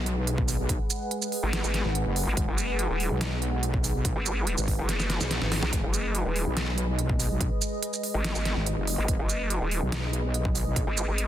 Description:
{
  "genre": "heavy wobble dubstep",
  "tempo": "143 BPM",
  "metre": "4/4",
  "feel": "half-time",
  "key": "G# minor",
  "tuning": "A4 = 440 Hz",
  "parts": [
    { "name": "supersaw pad", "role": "sustained chords", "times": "0.0-11.3 s", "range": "G#3 to F#5", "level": "-34 LUFS", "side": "equal", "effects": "phaser, sidechain pumping, low-pass filter" },
    { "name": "wobble bass", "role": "bass", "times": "0.0-10.9 s", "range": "F#1 to B1", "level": "-28 LUFS", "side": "equal", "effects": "chorus, overdrive" },
    { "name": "dubstep drum kit", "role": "drums", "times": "0.1-11.3 s", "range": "hi-hat, shaker, snare drum", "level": "-31 LUFS", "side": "right 2 dB", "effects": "small room ambience" },
    { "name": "electronic kick drum", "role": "drums", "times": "0.4-10.8 s", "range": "none", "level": "-29 LUFS", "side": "equal", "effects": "small room ambience" },
    { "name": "vowel-sweep wobble bass", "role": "bass", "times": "1.4-11.3 s", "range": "D#1 to B1", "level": "-28 LUFS", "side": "equal", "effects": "chorus, overdrive" }
  ],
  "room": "light reverb, digital ambience",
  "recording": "dense, heavily limited modern master",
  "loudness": "-25 LUFS",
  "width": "side -12 dB against mid",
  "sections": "0.0-11.3 A section",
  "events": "drum fill 4.9-5.7",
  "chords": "0.0 G#m"
}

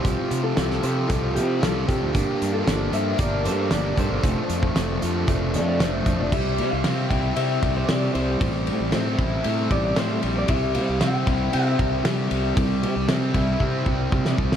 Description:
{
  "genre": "indie rock",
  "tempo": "115 BPM",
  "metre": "4/4",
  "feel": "straight",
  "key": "unclear",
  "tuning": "A4 = 439 Hz",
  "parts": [
    { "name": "electric guitar through a small old amp", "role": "melody", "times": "0.0-14.1 s", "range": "G4 to G5", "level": "-29 LUFS", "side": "left 1 dB", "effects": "slapback echo" },
    { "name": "barky tine electric piano", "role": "second line", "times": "0.0-5.8 s", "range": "D4 to C5", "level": "-35 LUFS", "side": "right 6 dB", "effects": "lush chorus, slapback echo" },
    { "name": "fuzz guitar", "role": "riff", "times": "0.0-14.6 s", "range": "F3 to G4", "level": "-25 LUFS", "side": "equal", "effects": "distortion, slapback echo" },
    { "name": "fuzz fingered electric bass", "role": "bass", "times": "0.0-14.6 s", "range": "F1 to C3", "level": "-26 LUFS", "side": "equal", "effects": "overdrive" },
    { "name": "loose indie drum kit", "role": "drums", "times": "0.0-14.6 s", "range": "crash cymbal, hi-hat, kick drum, ride cymbal, snare drum", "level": "-25 LUFS", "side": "equal", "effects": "none" }
  ],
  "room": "moderate lush hall reverb, RT60 2.1 s",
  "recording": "big arena sound",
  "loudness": "-20 LUFS",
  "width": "side -9 dB against mid",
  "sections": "0.0-6.3 A section; 6.3-14.6 B section",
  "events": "drum fill 13.6-14.6",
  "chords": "0.0 Csus4; 2.1 Gm; 4.2 Dm7/F; 6.3 C; 8.4 Am7; 10.5 C"
}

